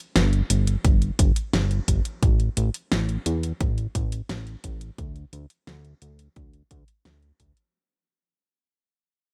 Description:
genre	synthwave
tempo	87 BPM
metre	4/4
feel	straight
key	unclear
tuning	A4 = 439 Hz
part	fat analog bass	bass	0.2-7.5 s	G1 to E2	-27 LUFS	equal	none
part	pop drum kit	drums	0.2-7.7 s	hi-hat, snare drum	-29 LUFS	equal	none
part	electronic kick drum	drums	0.8-7.5 s	none	-24 LUFS	equal	none
room	little or no reverb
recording	none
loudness	-24 LUFS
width	mono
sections	0.0-7.7 A section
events	fade-out 0.0-7.7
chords	none

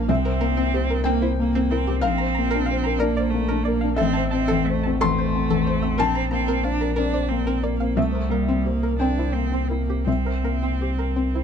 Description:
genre	neoclassical piano and strings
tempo	54-63 BPM (dotted quarters)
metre	6/8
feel	rubato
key	unclear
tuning	A4 = 440 Hz
part	clear cello	second line	0.0-11.4 s	G3 to D4	-26 LUFS	right 8 dB	none
part	felt-muted upright piano	accompaniment	0.0-11.4 s	A1 to C6	-24 LUFS	left 6 dB	none
part	string-like resonator pluck	arpeggios	0.0-11.4 s	C4 to Bb5	-30 LUFS	right 2 dB	chorus, slapback echo
part	warm sub bass	bass	0.0-11.4 s	A1 to C2	-26 LUFS	equal	none
room	little or no reverb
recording	close, detailed microphones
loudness	-20 LUFS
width	side -7 dB against mid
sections	0.0-11.4 A section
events	none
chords	0.1 C7; 2.0 Bbadd9; 4.0 Am; 6.0 Bbadd9; 8.0 C7

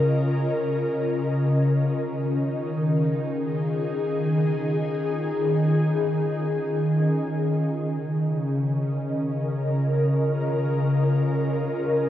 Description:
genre	ambient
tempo	free time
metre	none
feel	none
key	Db major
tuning	A4 = 438 Hz
part	ethereal airy pad	solo	0.0-12.1 s	Db3 to Eb5	-22 LUFS	equal	ensemble chorus, built-in reverb, cassette tape
room	wet studio reverb, RT60 0.5 s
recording	home recording on cassette, nothing above 7.8 kHz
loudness	-22 LUFS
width	side -12 dB against mid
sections	0.0-7.7 A section; 7.7-12.1 B section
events	none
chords	0.0 Db6; 2.0 Eb9sus4; 7.7 Db6

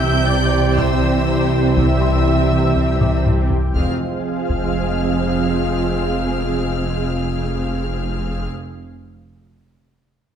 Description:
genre	cinematic, hybrid orchestral and electronic film score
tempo	121 BPM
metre	4/4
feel	straight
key	F dorian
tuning	A4 = 439 Hz
part	rich symphonic violin section	melody	0.0-8.5 s	E6 to G6	-30 LUFS	left 3 dB	none
part	warm symphonic violin section	second line	0.0-8.5 s	E5 to G5	-34 LUFS	left 5 dB	none
part	rich symphonic viola section	accompaniment	0.0-8.5 s	C4 to E5	-26 LUFS	right 1 dB	none
part	analog string pad	sustained chords	0.1-8.2 s	E3 to G5	-24 LUFS	right 1 dB	ensemble chorus
part	dark French horn section	sustained chords	0.0-8.2 s	G3 to F4	-26 LUFS	left 5 dB	none
part	harp-like synth pluck	arpeggios	0.0-3.2 s	C3 to C4	-27 LUFS	right 1 dB	none
part	rich chamber double bass section	bass	0.0-8.5 s	F1 to C2	-24 LUFS	right 4 dB	none
part	rich symphonic cello section	bass	0.0-8.5 s	F2 to C3	-25 LUFS	right 3 dB	none
part	saturated sub bass	bass	0.0-8.5 s	F1 to C2	-23 LUFS	left 1 dB	none
part	dark grand piano	texture	0.0-3.8 s	D5 to G6	-33 LUFS	left 3 dB	none
part	taiko ensemble	drums	0.8-4.7 s	none	-24 LUFS	left 1 dB	none
room	moderate scoring stage reverb, RT60 1.5 s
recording	none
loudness	-16 LUFS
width	side -8 dB against mid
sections	0.0-3.8 A section; 3.8-7.7 B section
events	drum fill 3.0-3.8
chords	0.0 C; 3.8 Fm

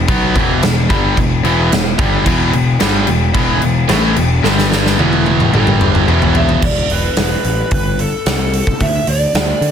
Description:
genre	hard rock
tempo	110 BPM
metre	4/4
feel	straight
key	E minor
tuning	A4 = 443 Hz
part	cranked stack guitar	riff	0.0-6.6 s	E2 to B3	-18 LUFS	left 8 dB	overdrive
part	overdriven electric guitar	riff	0.0-6.6 s	E2 to B3	-19 LUFS	right 12 dB	none
part	fuzz picked electric bass	bass	0.0-9.7 s	E1 to D3	-17 LUFS	equal	overdrive
part	huge arena drum kit	drums	0.1-9.7 s	crash cymbal, hi-hat, kick drum, snare drum, toms	-16 LUFS	equal	soft clipping on snare
part	crunchy overdriven guitar	riff	2.3-6.6 s	E2 to A3	-21 LUFS	left 1 dB	none
part	dark smooth lead guitar	melody	6.4-9.7 s	A4 to E5	-19 LUFS	equal	overdrive, slapback echo
room	little or no reverb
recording	dense, heavily limited modern master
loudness	-11 LUFS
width	side -8 dB against mid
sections	0.0-6.6 A section; 6.6-9.7 B section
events	drum fill 4.4-6.6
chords	0.0 Em; 4.4 G5; 5.0 E5; 5.5 G5; 6.1 E5; 7.7 Gadd9; 8.8 Dsus2

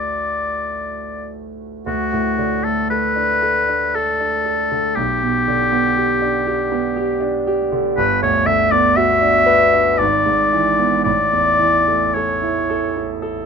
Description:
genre	classical, romantic duo for oboe and grand piano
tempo	59 BPM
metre	3/4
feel	uneven beats, rubato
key	D major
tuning	A4 = 440 Hz
part	warm oboe	melody	0.0-13.2 s	F#4 to E5	-17 LUFS	left 2 dB	none
part	clear concert grand piano	accompaniment	0.0-13.5 s	G1 to B4	-20 LUFS	right 3 dB	none
room	light reverb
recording	minimal, uncompressed stereo recording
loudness	-15 LUFS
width	side -6 dB against mid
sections	0.0-1.9 A section; 1.9-13.5 A section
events	none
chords	0.0 D; 1.9 D5; 5.0 G/B; 8.0 Gmaj7; 10.0 E7/G#; 11.1 A

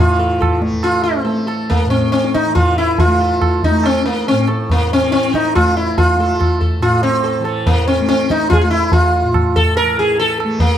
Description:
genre	indian classical, Hindustani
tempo	141 BPM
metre	7/4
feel	straight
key	A raga todi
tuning	A4 = 441 Hz
part	sitar	melody	0.0-10.8 s	Bb3 to Bb4	-15 LUFS	equal	none
part	tanpura	drone	0.0-10.8 s	A2 to A3	-21 LUFS	equal	none
part	tabla	percussion	0.4-10.8 s	none	-17 LUFS	equal	none
room	moderate recital hall reverb, RT60 1.7 s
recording	close, detailed microphones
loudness	-13 LUFS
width	side -10 dB against mid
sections	0.0-10.8 A section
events	none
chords	none

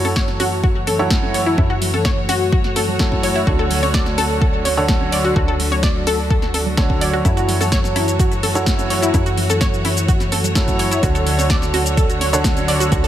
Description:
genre	progressive house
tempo	127 BPM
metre	4/4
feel	straight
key	F# minor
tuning	A4 = 440 Hz
part	muted studio string section	sustained chords	0.0-13.1 s	D3 to C#5	-24 LUFS	equal	sidechain pumping
part	analog pluck	arpeggios	0.0-13.1 s	E4 to D5	-22 LUFS	left 1 dB	chorus, sidechain pumping, tape echo
part	warm grand piano	stabs	0.0-13.0 s	D3 to C#5	-22 LUFS	right 2 dB	sidechain pumping, tape echo
part	tight sequencer bass	bass	0.0-13.1 s	D2 to F#2	-23 LUFS	equal	sidechain pumping
part	deep house drum kit	drums	0.0-13.1 s	hi-hat, shaker, snare drum	-24 LUFS	equal	overdrive
part	congas	percussion	0.0-13.0 s	none	-31 LUFS	right 5 dB	none
part	electronic kick drum	drums	0.2-13.0 s	none	-18 LUFS	equal	overdrive
room	digital ambience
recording	none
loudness	-15 LUFS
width	side -11 dB against mid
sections	0.0-13.1 A section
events	none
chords	0.0 F#m7; 3.5 Dmaj7; 7.2 F#m7; 11.0 Dmaj7

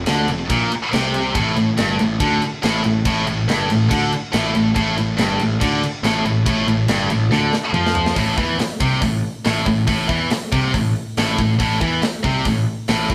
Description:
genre	heavy metal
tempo	140 BPM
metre	4/4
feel	straight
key	A phrygian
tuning	A4 = 439 Hz
part	distorted electric guitar	riff	0.0-13.1 s	F2 to F3	-24 LUFS	equal	distortion
part	heavy high-gain guitar	riff	0.0-13.1 s	F2 to F3	-23 LUFS	equal	distortion
part	fuzz picked electric bass	bass	0.0-13.1 s	F1 to F2	-27 LUFS	equal	overdrive
part	tight metal drum kit	drums	0.1-13.1 s	crash cymbal, hi-hat, kick drum, snare drum, toms	-26 LUFS	equal	none
room	moderate stone room reverb, RT60 1.1 s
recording	band playing live in one room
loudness	-19 LUFS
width	mono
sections	0.0-8.2 A section; 8.2-13.1 B section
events	drum fill 7.3-8.2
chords	0.0 F5; 1.4 Gsus2; 8.2 Am

